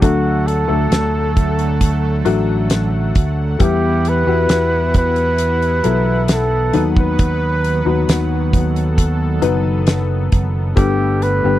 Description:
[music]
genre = pop ballad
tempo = 67 BPM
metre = 4/4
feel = straight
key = E minor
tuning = A4 = 440 Hz
[part]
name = mellow flugelhorn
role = melody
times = 0.0-11.6 s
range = F#4 to B4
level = -19 LUFS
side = right 2 dB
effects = slapback echo
[part]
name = warm upright piano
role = accompaniment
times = 0.0-11.6 s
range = G2 to B4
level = -20 LUFS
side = left 6 dB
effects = none
[part]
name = warm analog pad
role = sustained chords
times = 0.0-11.6 s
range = D3 to F#5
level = -25 LUFS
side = right 3 dB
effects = chorus, tremolo
[part]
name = fingered electric bass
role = bass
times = 0.0-11.6 s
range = F#1 to E2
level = -18 LUFS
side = right 1 dB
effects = none
[part]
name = damped 70s drum kit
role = drums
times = 0.0-11.4 s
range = hi-hat, kick drum, snare drum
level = -15 LUFS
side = equal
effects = none
[sound]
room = little or no reverb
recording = dry, close 1970s-style studio recording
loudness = -14 LUFS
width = side -14 dB against mid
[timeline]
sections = 0.0-11.6 A section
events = none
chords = 0.0 D; 3.6 Emadd9; 6.7 B/D#; 10.8 Gadd9

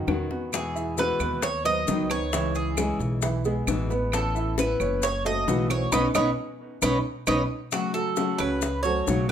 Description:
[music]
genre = latin, Cuban son and guajira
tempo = 133 BPM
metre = 4/4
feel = straight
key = unclear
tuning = A4 = 440 Hz
[part]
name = nylon-string guitar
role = accompaniment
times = 0.0-9.3 s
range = B2 to B4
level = -31 LUFS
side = left 5 dB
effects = none
[part]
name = dark grand piano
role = arpeggios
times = 0.0-9.3 s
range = C#3 to E5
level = -30 LUFS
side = right 4 dB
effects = tape echo
[part]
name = upright bass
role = bass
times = 0.0-9.3 s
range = F#1 to E2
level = -30 LUFS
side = equal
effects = none
[part]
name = bongos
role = percussion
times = 0.1-9.3 s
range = none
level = -31 LUFS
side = left 5 dB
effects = none
[part]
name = claves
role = percussion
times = 0.1-8.6 s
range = none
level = -36 LUFS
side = right 6 dB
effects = none
[part]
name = Cuban tres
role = melody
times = 0.5-9.3 s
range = F#4 to D#5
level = -27 LUFS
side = right 2 dB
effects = none
[part]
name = maracas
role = percussion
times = 0.5-9.3 s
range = none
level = -36 LUFS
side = left 8 dB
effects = none
[sound]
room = moderate large studio reverb, RT60 0.9 s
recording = none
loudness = -23 LUFS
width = side -9 dB against mid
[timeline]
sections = 0.0-7.7 A section; 7.7-9.3 B section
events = band accent 5.9-7.7; drum fill 7.3-7.7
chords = 0.0 Badd9; 0.5 Eadd9; 1.4 B/D#; 2.3 C#m; 3.2 E/B; 4.1 F#m7; 5.9 Badd9; 7.7 F#m

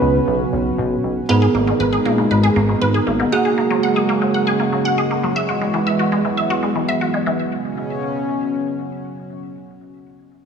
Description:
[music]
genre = pop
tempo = 118 BPM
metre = 4/4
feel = straight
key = B major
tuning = A4 = 440 Hz
[part]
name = expressive synth lead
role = melody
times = 0.0-0.7 s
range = B4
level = -25 LUFS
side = equal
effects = chorus, tape echo
[part]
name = bell-like tine electric piano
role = accompaniment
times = 0.0-5.3 s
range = A#3 to B4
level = -20 LUFS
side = right 5 dB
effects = none
[part]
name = warm analog pad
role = sustained chords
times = 0.0-9.4 s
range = B2 to A#4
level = -21 LUFS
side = equal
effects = chorus
[part]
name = chorused synth bass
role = bass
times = 0.0-3.2 s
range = G#1 to C#2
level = -19 LUFS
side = equal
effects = none
[part]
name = resonant blip pluck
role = arpeggios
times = 1.3-7.4 s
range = B2 to F#5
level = -21 LUFS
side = left 1 dB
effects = phaser, tape echo
[sound]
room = moderate lush hall reverb, RT60 2.3 s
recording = none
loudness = -16 LUFS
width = side -6 dB against mid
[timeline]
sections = 0.0-1.3 A section; 1.3-9.4 B section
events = none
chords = 0.0 Bsus2; 1.3 G#madd9; 3.3 F#add9; 5.4 Eadd9; 7.4 Bsus2

